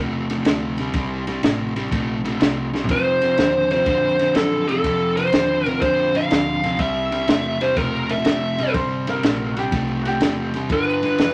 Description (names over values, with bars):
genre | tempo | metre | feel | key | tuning
electric blues shuffle | 123 BPM | 4/4 | swing 68% on 8ths | C mixolydian | A4 = 440 Hz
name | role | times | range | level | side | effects
overdriven semi-hollow guitar | riff | 0.0-11.3 s | F2 to A3 | -26 LUFS | equal | none
vintage muted fingered electric bass | bass | 0.0-11.3 s | E1 to G2 | -35 LUFS | equal | none
compact cocktail drum kit | drums | 0.3-11.3 s | kick drum, ride cymbal, snare drum, toms | -25 LUFS | equal | none
smooth overdriven lead guitar | melody | 2.9-11.3 s | A4 to F5 | -22 LUFS | equal | none
bright upright piano | second line | 8.7-10.6 s | F#4 to C5 | -29 LUFS | equal | none
room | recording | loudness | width
light reverb | vinyl crackle | -20 LUFS | mono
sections
0.0-11.3 A section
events
drum fill 2.6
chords
0.0 C7; 2.9 F7; 6.8 C7; 10.7 G7